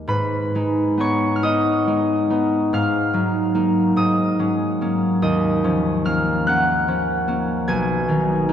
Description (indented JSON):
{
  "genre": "classical, solo harp piece",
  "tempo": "42-50 BPM (dotted quarters)",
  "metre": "6/8",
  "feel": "rubato",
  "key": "G# dorian",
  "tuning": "A4 = 442 Hz",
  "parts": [
    { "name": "concert harp", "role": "solo", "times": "0.0-8.5 s", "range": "B1 to G#6", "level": "-17 LUFS", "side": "equal", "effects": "none" }
  ],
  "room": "wet cathedral reverb, RT60 4.6 s",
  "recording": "dark, warm production",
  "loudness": "-17 LUFS",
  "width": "side -9 dB against mid",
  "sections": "0.1-8.5 A section",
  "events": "none",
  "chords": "0.1 G#madd9; 2.7 D#m7/G#; 5.2 D#m9; 7.7 Bmaj7",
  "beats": "| 0.08 1.42 | 2.70 3.95 | 5.22 6.45 | 7.67"
}